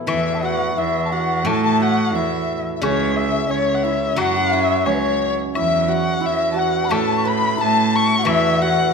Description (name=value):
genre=chinese traditional, Chinese chamber ensemble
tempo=88 BPM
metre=2/4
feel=rubato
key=A gong mode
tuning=A4 = 440 Hz
part: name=hammered dulcimer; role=second line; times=0.0-8.9 s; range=C#4 to B4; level=-24 LUFS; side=right 6 dB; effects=none
part: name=steel-string zither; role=accompaniment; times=0.0-8.9 s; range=A2 to E4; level=-25 LUFS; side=left 5 dB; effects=none
part: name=dark erhu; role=melody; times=0.1-8.9 s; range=C#5 to C#6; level=-23 LUFS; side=left 3 dB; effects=none
part: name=bright cello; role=second line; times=0.1-8.9 s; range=C#2 to A2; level=-22 LUFS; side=right 5 dB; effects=none
part: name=mellow hollow large dizi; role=second line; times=0.1-8.9 s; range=B4 to C#6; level=-23 LUFS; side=left 8 dB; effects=none
part: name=woodblock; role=percussion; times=0.1-8.4 s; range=none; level=-29 LUFS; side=left 6 dB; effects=none
room=moderate scoring stage reverb, RT60 1.5 s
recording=none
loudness=-16 LUFS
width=side -5 dB against mid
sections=0.1-8.9 A section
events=none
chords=none